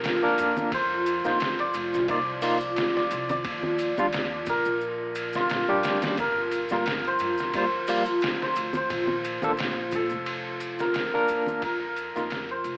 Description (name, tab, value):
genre	trip hop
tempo	88 BPM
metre	4/4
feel	swing 54% on 16ths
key	unclear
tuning	A4 = 440 Hz
part	hammered dulcimer	melody	0.0-12.8 s	F4 to D5	-28 LUFS	equal	tape echo
part	dark analog pad	sustained chords	0.0-12.8 s	F4	-30 LUFS	equal	chorus
part	trip hop sampler-style drum kit	drums	0.0-12.8 s	hi-hat, kick drum, ride cymbal, snare drum	-31 LUFS	equal	overdrive, studio reverb
part	maracas and congas	percussion	0.0-12.8 s	none	-37 LUFS	equal	none
part	barky tine electric piano	accompaniment	0.2-12.3 s	G3 to Bb4	-27 LUFS	equal	tremolo
part	upright bass	bass	0.4-12.8 s	F1 to Bb2	-42 LUFS	equal	none
room	light reverb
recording	dry, gritty hardware recording, vinyl crackle, AM radio sound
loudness	-24 LUFS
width	side -27 dB against mid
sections	0.0-12.8 A section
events	fade-out 9.8-12.8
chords	0.0 Bb; 0.7 F7sus4; 3.4 Ebmaj9; 6.2 Gm7; 8.9 Bbmaj7; 11.6 Fsus4